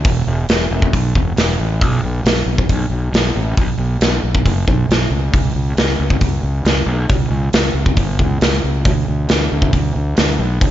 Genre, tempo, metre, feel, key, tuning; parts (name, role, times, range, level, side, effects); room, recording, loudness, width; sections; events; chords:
hard rock; 136 BPM; 4/4; straight; A4 = 436 Hz
fuzz fingered electric bass; bass; 0.0-10.7 s; E1 to D2; -18 LUFS; equal; overdrive
big rock drum kit; drums; 0.0-10.7 s; hi-hat, kick drum, snare drum; -16 LUFS; equal
light reverb; nothing above 7.5 kHz; -14 LUFS; side -12 dB against mid
0.0-10.7 A section